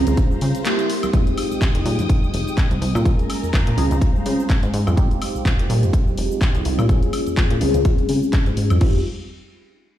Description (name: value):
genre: filtered disco house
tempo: 125 BPM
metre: 4/4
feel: swing 56% on 16ths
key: F minor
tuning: A4 = 440 Hz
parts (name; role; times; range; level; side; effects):
- funky polysynth comp; accompaniment; 0.0-9.0 s; G3 to Ab4; -24 LUFS; equal; chorus, phaser, sidechain pumping, low-pass filter
- warm studio string section; sustained chords; 0.0-5.0 s; Ab3 to Eb6; -32 LUFS; left 1 dB; sidechain pumping, low-pass filter
- plucky analog bass; bass; 0.0-9.0 s; F1 to Db3; -20 LUFS; equal; sidechain pumping, low-pass filter
- house drum kit; drums; 0.1-8.9 s; crash cymbal, handclaps, hi-hat, shaker, woodblock; -29 LUFS; left 1 dB; sidechain pumping on hats, sidechain pumping on perc, sidechain pumping on cymbals
- congas and tambourine; percussion; 0.1-8.8 s; none; -32 LUFS; right 2 dB; sidechain pumping on perc, low-pass filter on perc
- electronic kick drum; drums; 0.2-8.9 s; none; -18 LUFS; equal; none
room: little or no reverb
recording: played on a big sound system in a bare room, stone room reverb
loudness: -17 LUFS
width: side -12 dB against mid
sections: 0.0-1.1 A section; 1.1-8.8 B section; 8.8-10.0 C section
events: filter sweep 0.0-1.1, 1.1-8.8; band accent 0.7; filter sweep on analog synth bass 1.1-8.8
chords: 0.0 Dbmaj7; 0.7 C7; 1.1 Fm9; 3.1 Bbm7; 3.8 Dbmaj7; 5.0 Fm9; 6.9 Bbm7; 7.6 Dbmaj7; 8.8 Fm9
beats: 0.17 0.65 | 1.13 1.61 2.09 2.57 | 3.05 3.53 4.01 4.49 | 4.97 5.45 5.93 6.41 | 6.89 7.37 7.85 8.33 | 8.81